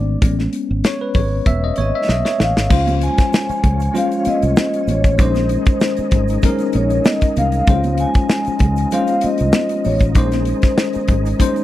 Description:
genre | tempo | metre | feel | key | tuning
lush 1970s-style soul | 97 BPM | 4/4 | swing 54% on 16ths | Db major | A4 = 440 Hz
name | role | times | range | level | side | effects
bell-like tine electric piano | accompaniment | 0.0-11.6 s | G#3 to E5 | -21 LUFS | left 2 dB | medium stereo tremolo
fingered electric bass | bass | 0.0-11.3 s | E1 to Db2 | -19 LUFS | equal | none
modern studio drum kit | drums | 0.2-11.6 s | crash cymbal, hi-hat, kick drum, snare drum | -16 LUFS | equal | none
congas | percussion | 0.2-11.6 s | none | -29 LUFS | right 6 dB | none
vibraphone with soft mallets | melody | 1.8-11.6 s | C5 to Ab5 | -21 LUFS | left 1 dB | none
overdriven tonewheel organ | sustained chords | 2.7-11.6 s | Eb3 to Eb4 | -29 LUFS | right 2 dB | slow rotary speaker, chorus vibrato
tube shaker | percussion | 2.7-11.6 s | none | -45 LUFS | right 10 dB | none
room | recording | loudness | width
small room reverb | dry, close 1970s-style studio recording | -14 LUFS | side -14 dB against mid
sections
0.0-2.7 A section; 2.7-11.6 B section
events
tine electric piano solo 0.0-2.7; drum fill 2.1-2.7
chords
0.2 Amaj7; 2.7 Dbmaj7; 5.2 Bbm11; 7.7 Dbmaj7; 10.2 Bbm11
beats
| 0.22 0.84 1.46 2.08 | 2.71 3.33 3.95 4.57 | 5.19 5.81 6.43 7.05 | 7.67 8.29 8.91 9.54 | 10.16 10.78 11.40

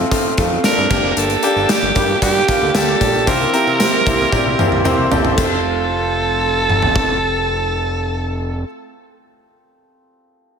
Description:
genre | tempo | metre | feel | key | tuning
1980s-style pop | 114 BPM | 4/4 | straight | F major | A4 = 440 Hz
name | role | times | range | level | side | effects
bright baby grand piano | accompaniment | 0.0-10.6 s | A3 to D5 | -19 LUFS | left 2 dB | none
direct-recorded clean electric guitar | riff | 0.0-9.0 s | E3 to G4 | -26 LUFS | right 6 dB | wide subtle chorus, digital delay, slapback echo
fat analog bass | bass | 0.0-8.6 s | F1 to C3 | -23 LUFS | equal | none
gated 80s drum kit | drums | 0.1-7.1 s | crash cymbal, hi-hat, kick drum, snare drum, tambourine, toms | -19 LUFS | equal | none
tambourine | percussion | 0.1-5.6 s | none | -34 LUFS | left 8 dB | none
raspy alto saxophone | melody | 0.6-8.7 s | G4 to Bb4 | -18 LUFS | right 2 dB | digital delay
room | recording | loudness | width
wet scoring stage reverb, RT60 1.9 s, small room ambience | big arena sound | -14 LUFS | side -6 dB against mid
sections
0.0-5.4 A section; 5.4-9.6 B section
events
drum fill 4.3-5.4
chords
0.0 F; 0.9 Gm; 3.3 C7; 5.4 F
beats
0.12 0.64 | 1.17 1.70 2.22 2.75 | 3.27 3.80 4.33 4.85 | 5.38 5.91 6.43 6.96 | 7.49 8.01 8.54 9.06

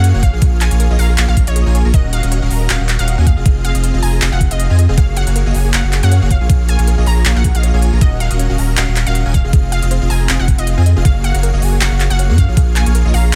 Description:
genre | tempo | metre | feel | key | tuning
future bass | 158 BPM | 4/4 | swing 55% on 16ths, half-time | unclear | A4 = 440 Hz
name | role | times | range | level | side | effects
unison pluck | melody | 0.0-13.3 s | Db5 to Bb5 | -27 LUFS | equal | sidechain pumping, dub echo
airy dreamy lead | arpeggios | 0.0-13.4 s | Eb5 to Bb5 | -34 LUFS | equal | chorus, sidechain pumping, dub echo
unison pluck | arpeggios | 0.0-13.4 s | Ab4 to Eb6 | -34 LUFS | equal | sidechain pumping, dub echo
supersaw chords | riff | 0.0-13.4 s | Bb3 to Bb5 | -25 LUFS | equal | vintage 12-bit sampler grit, sidechain pumping
saturated sub bass | bass | 0.0-13.3 s | Eb1 to Gb2 | -16 LUFS | equal | sidechain pumping
trap drum kit | drums | 0.0-13.4 s | handclaps, hi-hat | -23 LUFS | equal | studio reverb
electronic kick drum | drums | 0.2-12.7 s | none | -14 LUFS | equal | studio reverb
room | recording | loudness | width
digital ambience | none | -14 LUFS | mono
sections
0.0-13.4 A section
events
none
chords
0.0 Gbmaj9; 1.9 Ebm7; 3.3 Fm7; 5.0 Gbmaj9; 8.0 Ebm7; 9.3 Fm7; 11.1 Gbmaj9; 12.4 Bbm7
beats
0.04 | 0.42 0.80 1.18 1.56 | 1.94 2.32 2.70 3.08 | 3.46 3.84 4.22 4.60 | 4.98 5.36 5.74 6.12 | 6.50 6.88 7.25 7.63 | 8.01 8.39 8.77 9.15 | 9.53 9.91 10.29 10.67 | 11.05 11.43 11.81 12.19 | 12.57 12.95 13.33

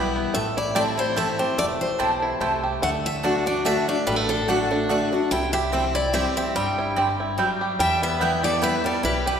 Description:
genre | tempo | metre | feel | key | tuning
bluegrass | 145 BPM | 3/4 | swing 55% on 8ths | unclear | A4 = 440 Hz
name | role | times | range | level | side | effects
picked steel-string acoustic guitar | melody | 0.0-9.4 s | A4 to G5 | -26 LUFS | left 1 dB | none
picked steel-string acoustic guitar | accompaniment | 0.0-9.4 s | E2 to F#4 | -26 LUFS | left 2 dB | none
bluegrass banjo | arpeggios | 0.0-9.4 s | G3 to G4 | -26 LUFS | right 2 dB | none
mandolin | stabs | 0.0-8.7 s | A3 to A5 | -28 LUFS | right 2 dB | none
upright bass | bass | 0.0-9.3 s | E1 to E2 | -33 LUFS | equal | none
clear fiddle | second line | 7.8-9.4 s | G4 to E5 | -29 LUFS | left 5 dB | none
room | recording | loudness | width
wet scoring stage reverb, RT60 1.9 s | recorded in a church or concert hall | -20 LUFS | side -7 dB against mid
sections
0.0-9.4 A section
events
none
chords
0.3 Am; 2.8 D; 5.3 C; 7.8 Em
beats
| 0.34 0.76 1.17 | 1.58 2.00 2.41 | 2.83 3.24 3.66 | 4.07 4.48 4.90 | 5.31 5.73 6.14 | 6.55 6.97 7.38 | 7.80 8.21 8.62 | 9.04

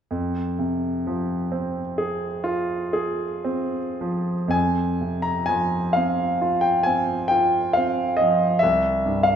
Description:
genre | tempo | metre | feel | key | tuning
classical, romantic nocturne for solo piano | 34-49 BPM (dotted quarters) | 9/8 | rubato | F minor | A4 = 441 Hz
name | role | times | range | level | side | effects
clear concert grand piano | solo | 0.1-9.4 s | C2 to Bb5 | -20 LUFS | equal | none
room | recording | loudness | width
wet recital hall reverb, RT60 1.6 s | minimal, uncompressed stereo recording | -20 LUFS | side -8 dB against mid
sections
0.1-4.5 A section; 4.5-9.4 B section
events
none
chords
0.1 Fm; 4.5 F5; 8.6 C5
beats
| 0.11 1.53 2.94 | 4.54 5.95 7.32 | 8.63

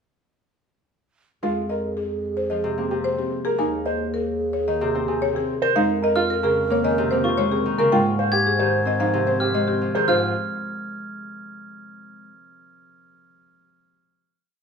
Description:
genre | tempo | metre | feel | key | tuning
classical, minimalist pattern music | 111 BPM | 4/4 | straight | Ab major | A4 = 440 Hz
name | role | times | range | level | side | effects
buzzing marimba with medium mallets | melody | 1.4-10.3 s | G4 to Ab5 | -25 LUFS | left 5 dB | none
mellow hollow wooden-headed alto flute | second line | 1.4-9.9 s | Ab4 to C5 | -28 LUFS | right 4 dB | none
Celtic harp | accompaniment | 1.4-12.3 s | C3 to C4 | -27 LUFS | equal | none
warm baby grand piano | arpeggios | 1.4-10.3 s | C4 to C5 | -25 LUFS | right 4 dB | none
mellow bass clarinet | bass | 1.4-10.3 s | Eb2 to Ab2 | -31 LUFS | left 1 dB | none
glockenspiel with soft plastic mallets | arpeggios | 6.2-10.3 s | Db6 to Ab6 | -28 LUFS | left 1 dB | none
room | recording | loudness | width
moderate stone room reverb, RT60 1.0 s | minimal, uncompressed stereo recording | -20 LUFS | side -6 dB against mid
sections
1.4-10.1 A section; 10.1-12.2 final chord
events
none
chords
1.4 Fm; 3.6 Ebsus4; 5.8 Db69/F; 7.9 Abmaj7; 10.1 Ab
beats
| 1.43 1.97 2.51 3.05 | 3.59 4.13 4.67 5.21 | 5.75 6.29 6.83 7.38 | 7.92 8.46 9.00 9.54 | 10.08 10.62 11.16 11.70

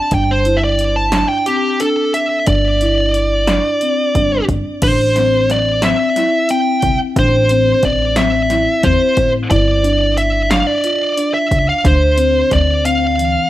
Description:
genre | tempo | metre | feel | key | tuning
progressive instrumental, band music in an uneven meter | 179 BPM (eighths) | 7/8 | straight | unclear | A4 = 440 Hz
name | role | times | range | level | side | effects
high-gain lead guitar | melody | 0.0-13.5 s | G4 to A5 | -15 LUFS | right 1 dB | distortion, digital delay
marimba with soft mallets | arpeggios | 0.1-13.4 s | E3 to F4 | -19 LUFS | left 2 dB | none
upright bass | bass | 0.1-13.3 s | G1 to E2 | -18 LUFS | equal | none
punchy analog drum machine | drums | 0.1-13.4 s | crash cymbal, hi-hat, kick drum, snare drum | -19 LUFS | equal | none
room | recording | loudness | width
moderate studio reverb, RT60 0.5 s | none | -12 LUFS | side -14 dB against mid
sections
0.0-4.8 A section; 4.8-13.5 B section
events
kick and snare drop out 12.9-13.5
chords
0.1 G5; 4.8 Am; 9.5 G5; 11.9 Am (rootless)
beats
| 0.13 0.46 0.80 1.14 1.47 1.81 2.14 | 2.48 2.81 3.15 3.48 3.82 4.16 4.49 | 4.83 5.16 5.50 5.83 6.17 6.50 6.84 | 7.17 7.51 7.84 8.18 8.51 8.85 9.18 | 9.52 9.85 10.19 10.52 10.86 11.19 11.53 | 11.86 12.19 12.53 12.86 13.20

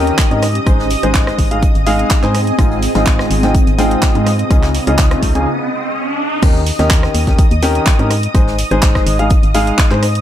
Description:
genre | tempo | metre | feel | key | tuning
piano house | 125 BPM | 4/4 | straight | Ab major | A4 = 439 Hz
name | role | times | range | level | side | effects
analog string pad | sustained chords | 0.0-10.2 s | Eb5 to Eb6 | -24 LUFS | equal | ensemble chorus, sidechain pumping
warm grand piano | riff | 0.0-10.0 s | Ab2 to Ab5 | -17 LUFS | left 1 dB | sidechain pumping, ping-pong delay
organ-like FM bass | bass | 0.0-10.2 s | Ab1 to Ab2 | -17 LUFS | equal | sidechain pumping
granular cloud pad | texture | 0.0-5.5 s | C4 to Bb5 | -22 LUFS | right 1 dB | built-in reverb, sidechain pumping
house drum kit | drums | 0.1-10.2 s | crash cymbal, handclaps, hi-hat, rim click | -21 LUFS | right 2 dB | none
electronic kick drum | drums | 0.2-9.9 s | none | -13 LUFS | equal | none
vintage brush drum kit | drums | 0.2-10.1 s | hi-hat, snare drum | -31 LUFS | left 2 dB | none
riser | sound effects | 4.4-6.4 s | none | -24 LUFS | right 1 dB | none
room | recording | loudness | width
digital ambience | none | -11 LUFS | side -11 dB against mid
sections
0.0-6.4 A section; 6.4-10.2 B section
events
riser 4.4-6.4; break 5.5-6.4; drop 6.4-10.2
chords
0.4 Ab; 2.3 Fm7/Ab; 4.5 Dbadd9; 6.4 Eb7; 8.1 Ab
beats
0.19 | 0.67 1.15 1.63 2.11 | 2.59 3.07 3.55 4.03 | 4.51 4.99 5.47 5.95 | 6.43 6.91 7.39 7.87 | 8.35 8.83 9.31 9.79

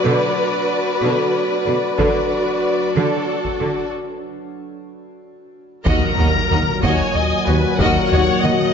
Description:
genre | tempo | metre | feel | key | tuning
cinematic, hybrid orchestral and electronic film score | 62 BPM (dotted quarters) | 6/8 | straight | Eb minor | A4 = 439 Hz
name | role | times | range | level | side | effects
rich symphonic violin section | second line | 0.0-8.5 s | Gb4 to Eb5 | -22 LUFS | left 2 dB | none
warm symphonic viola section | accompaniment | 0.0-8.7 s | D3 to Eb5 | -23 LUFS | right 2 dB | none
metallic inharmonic drone | sustained chords | 0.0-8.7 s | Bb2 to B4 | -26 LUFS | equal | chorus, built-in reverb
clear symphonic cello section | bass | 0.0-8.5 s | Eb2 to D3 | -24 LUFS | right 3 dB | none
taiko ensemble | drums | 2.0-8.4 s | none | -26 LUFS | equal | none
clear chamber violin section | melody | 5.9-8.7 s | Gb5 to Bb5 | -22 LUFS | left 6 dB | none
clear trombone section | sustained chords | 5.9-8.7 s | Eb3 to Gb3 | -25 LUFS | right 2 dB | none
mellow French horn section | sustained chords | 5.9-8.7 s | Bb2 to Gb4 | -25 LUFS | left 9 dB | none
rubbery square bass | riff | 5.9-8.6 s | Eb2 to Eb3 | -23 LUFS | left 2 dB | none
mellow tuba | bass | 5.9-8.6 s | Eb2 | -25 LUFS | right 3 dB | none
warm symphonic double bass section | bass | 5.9-8.5 s | Eb2 | -26 LUFS | right 4 dB | none
impact | sound effects | 5.9-7.8 s | none | -26 LUFS | equal | none
room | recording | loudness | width
moderate scoring stage reverb, RT60 1.9 s | nothing above 7.6 kHz | -16 LUFS | side -7 dB against mid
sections
0.0-5.9 A section; 5.9-8.7 B section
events
build-up 0.0-5.9; break 3.9-5.9; impact 5.9-7.8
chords
0.0 Bm; 2.0 D; 5.9 Ebm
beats
| 0.06 1.03 | 1.99 2.96 | 3.93 4.90 | 5.87 6.83 | 7.80

